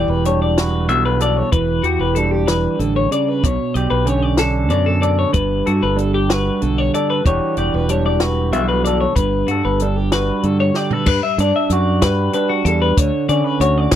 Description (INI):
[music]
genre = math rock and midwest emo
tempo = 63 BPM (dotted quarters)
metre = 6/8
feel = straight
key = G lydian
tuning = A4 = 439 Hz
[part]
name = electric guitar through a small old amp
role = accompaniment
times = 0.0-14.0 s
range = G2 to A4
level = -20 LUFS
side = right 5 dB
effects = none
[part]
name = twelve-string electric guitar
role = arpeggios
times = 0.0-14.0 s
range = F#4 to E5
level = -20 LUFS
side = left 6 dB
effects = warbly pitch drift
[part]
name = modern bright fingered electric bass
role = bass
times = 0.0-14.0 s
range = E1 to D3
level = -19 LUFS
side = equal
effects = none
[part]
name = compact cocktail drum kit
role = drums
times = 0.3-14.0 s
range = crash cymbal, hi-hat, kick drum, snare drum, toms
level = -19 LUFS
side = equal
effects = none
[sound]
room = little or no reverb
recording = dry, close 1970s-style studio recording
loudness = -15 LUFS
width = side -11 dB against mid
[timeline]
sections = 0.0-11.1 A section; 11.1-14.0 B section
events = drum fill 10.7-11.1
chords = 0.0 Em9; 3.4 Bm9; 5.3 Gmaj9; 7.3 Em9; 9.2 Gmaj9; 11.1 Gmaj7; 13.0 Dmaj7